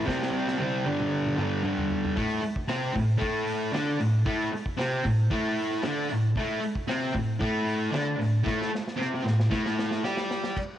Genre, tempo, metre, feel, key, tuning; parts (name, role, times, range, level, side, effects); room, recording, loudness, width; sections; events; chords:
garage rock duo or trio; 114 BPM; 4/4; straight; A4 = 435 Hz
fuzz guitar; riff; 0.0-10.6 s; G2 to G4; -25 LUFS; equal; distortion, cassette tape
vintage drum kit; drums; 0.1-10.7 s; crash cymbal, hi-hat, kick drum, snare drum, toms; -34 LUFS; equal; cassette tape
light reverb, small room ambience; home recording on cassette; -25 LUFS; side -11 dB against mid
0.0-2.2 A section; 2.2-10.6 B section
drum fill 0.1-2.2, 8.5-10.6
0.1 C5; 0.9 G5; 2.2 Amadd11